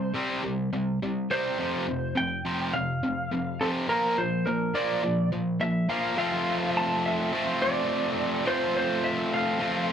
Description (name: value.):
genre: rock.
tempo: 104 BPM.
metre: 4/4.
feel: straight.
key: unclear.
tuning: A4 = 439 Hz.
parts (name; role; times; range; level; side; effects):
clean lap steel guitar; melody; 0.0-9.9 s; A4 to A5; -28 LUFS; equal; slapback echo.
distorted electric guitar; riff; 0.0-9.9 s; F2 to F4; -27 LUFS; equal; overdrive.
room: light reverb.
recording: dry, close 1970s-style studio recording.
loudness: -25 LUFS.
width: side -8 dB against mid.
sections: 0.0-6.2 A section; 6.2-9.9 B section.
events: none.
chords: 0.0 C5; 1.6 F5; 3.9 Bb; 6.2 F.